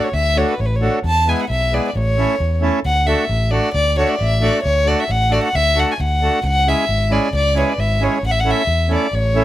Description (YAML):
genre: balkan folk, Balkan wedding band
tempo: 134 BPM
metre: 2/4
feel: swing 55% on 16ths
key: unclear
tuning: A4 = 441 Hz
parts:
  - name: warm violin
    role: melody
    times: 0.0-9.4 s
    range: B4 to A5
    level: -18 LUFS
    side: left 1 dB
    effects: plate reverb
  - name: accordion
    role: accompaniment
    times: 0.0-9.4 s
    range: G#3 to A4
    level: -20 LUFS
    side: right 1 dB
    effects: none
  - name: overdriven fingered electric bass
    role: bass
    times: 0.1-9.4 s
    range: G#1 to E2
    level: -19 LUFS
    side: equal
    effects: none
room: light reverb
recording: none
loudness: -15 LUFS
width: side -14 dB against mid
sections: 0.0-2.8 A section; 2.8-9.4 B section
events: none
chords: 0.0 D; 1.0 E; 1.9 A; 2.8 D; 6.4 C#m; 8.2 A